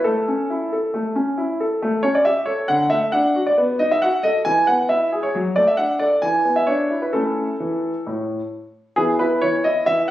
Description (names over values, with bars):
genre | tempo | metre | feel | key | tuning
classical-period piano sonatina | 135 BPM | 4/4 | rubato | A major | A4 = 441 Hz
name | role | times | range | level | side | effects
clear concert grand piano | solo | 0.0-10.1 s | A2 to G#5 | -17 LUFS | equal | none
room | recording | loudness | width
light reverb | recorded on a phone in the room, studio reverb, compression | -17 LUFS | side -14 dB against mid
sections
0.0-9.0 A section; 9.0-10.1 B section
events
none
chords
0.1 A; 1.8 A7; 2.7 D; 3.6 B7; 4.5 E; 5.3 D/F#; 6.2 E5; 7.1 A; 9.0 E5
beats
| 0.05 0.49 0.94 1.38 | 1.82 2.26 2.69 3.13 | 3.57 4.01 4.46 4.90 | 5.34 5.78 6.23 6.68 | 7.14 7.60 8.06 8.52 | 8.97 9.43 9.88